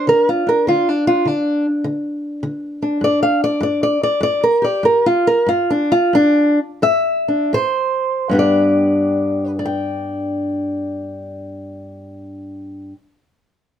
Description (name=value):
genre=acoustic country blues, solo or duo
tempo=77-102 BPM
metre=4/4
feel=swing 66% on 8ths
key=G major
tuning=A4 = 439 Hz
part: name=fingerpicked old ladder-braced acoustic guitar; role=solo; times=0.0-13.0 s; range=G2 to G5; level=-15 LUFS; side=equal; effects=none
room=light reverb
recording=none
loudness=-15 LUFS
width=side -9 dB against mid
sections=0.0-8.3 A section; 8.3-11.4 B section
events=steel-string acoustic guitar solo 0.0-8.3; slowing down 3.0-8.3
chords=0.0 N.C.; 3.0 G5; 7.5 N.C.; 8.3 G